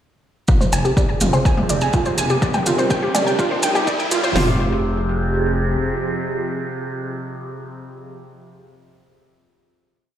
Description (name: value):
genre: melodic techno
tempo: 124 BPM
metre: 4/4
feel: straight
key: F dorian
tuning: A4 = 440 Hz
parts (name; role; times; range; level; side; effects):
- warm analog pad; sustained chords; 0.5-8.2 s; F3 to Bb4; -26 LUFS; right 1 dB; chorus, sidechain pumping
- analog pluck; arpeggios; 0.5-4.6 s; F4 to Ab5; -22 LUFS; right 1 dB; chorus, sidechain pumping, ping-pong delay
- overtone-sweeping drone; drone; 1.3-8.2 s; F2 to C3; -29 LUFS; equal; chorus, built-in reverb, sidechain pumping
- techno drum kit; drums; 0.5-4.5 s; hi-hat, kick drum, snare drum, toms; -19 LUFS; equal; none
- maracas; percussion; 0.5-4.3 s; none; -28 LUFS; right 2 dB; none
- riser; sound effects; 1.5-4.4 s; none; -27 LUFS; equal; none
- techno drum kit; drums; 0.6-4.2 s; hi-hat, toms, woodblock; -24 LUFS; equal; none
- gritty driven synth bass; bass; 0.7-5.8 s; F1; -22 LUFS; equal; sidechain pumping
room: wet recital hall reverb, RT60 1.4 s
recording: played on a big sound system in a bare room, stone room reverb, high-pass filter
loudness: -17 LUFS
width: side -10 dB against mid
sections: 0.5-4.4 build; 4.4-8.2 final chord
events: build-up 0.5-4.4; filter sweep on synth arpeggio sound 0.5-4.4; filter sweep 0.5-4.4; riser 1.5-4.4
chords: 0.5 Fm; 2.4 Gm7/F; 4.4 Fm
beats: | 0.48 0.97 1.45 1.94 | 2.42 2.90 3.39 3.87 | 4.36 4.84 5.32 5.81 | 6.29 6.78 7.26 7.74